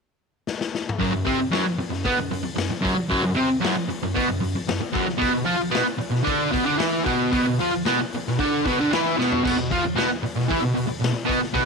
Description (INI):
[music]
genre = garage rock duo or trio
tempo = 114 BPM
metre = 4/4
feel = straight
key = unclear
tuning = A4 = 440 Hz
[part]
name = raw garage drum kit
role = drums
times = 0.5-11.7 s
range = crash cymbal, hi-hat, kick drum, snare drum, toms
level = -28 LUFS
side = left 4 dB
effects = none
[part]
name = fuzz guitar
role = riff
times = 1.0-11.7 s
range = F#2 to E#4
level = -21 LUFS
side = right 1 dB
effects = distortion
[sound]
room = light reverb, small room ambience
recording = 1960s-style stereo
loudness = -20 LUFS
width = side -4 dB against mid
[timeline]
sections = 1.0-11.7 A section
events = drum fill 0.5-1.0, 9.2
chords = 0.0 N.C.; 5.2 Bmadd11